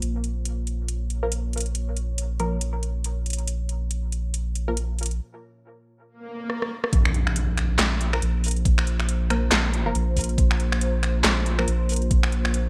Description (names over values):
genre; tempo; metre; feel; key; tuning
deep dubstep; 139 BPM; 4/4; swing 58% on 16ths, half-time; Bb minor; A4 = 440 Hz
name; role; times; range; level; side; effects
deep dark ambient pad; sustained chords; 0.0-12.7 s; Bb3 to Db5; -37 LUFS; equal; chorus, built-in reverb
soft dub sub bass; bass; 0.0-12.7 s; Bb1; -27 LUFS; equal; none
garage drum kit; drums; 0.0-12.6 s; finger snaps, handclaps, hi-hat, rim click, snare drum; -28 LUFS; equal; small room reverb, gated reverb
filtered dub chord stab; stabs; 1.2-4.8, 8.1-11.7 s; F3 to Bb4; -34 LUFS; equal; phaser, dub echo
swell and impact; sound effects; 6.2-8.7 s; none; -35 LUFS; equal; none
electronic kick drum; drums; 6.9-12.2 s; none; -23 LUFS; equal; small room reverb
room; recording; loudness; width
little or no reverb; bright 1980s-style digital production; -24 LUFS; mono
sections
0.0-6.9 A section; 6.9-12.7 B section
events
break 5.2-6.9; swell 6.2-6.9; drum fill 6.5-6.9; drop 6.9-12.7; impact 6.9-8.7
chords
0.0 Bb5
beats
| 0.02 0.45 0.89 1.32 | 1.75 2.18 2.61 3.04 | 3.48 3.91 4.34 4.77 | 5.20 5.63 6.07 6.50 | 6.93 7.36 7.79 8.22 | 8.65 9.09 9.52 9.95 | 10.38 10.81 11.24 11.68 | 12.11 12.54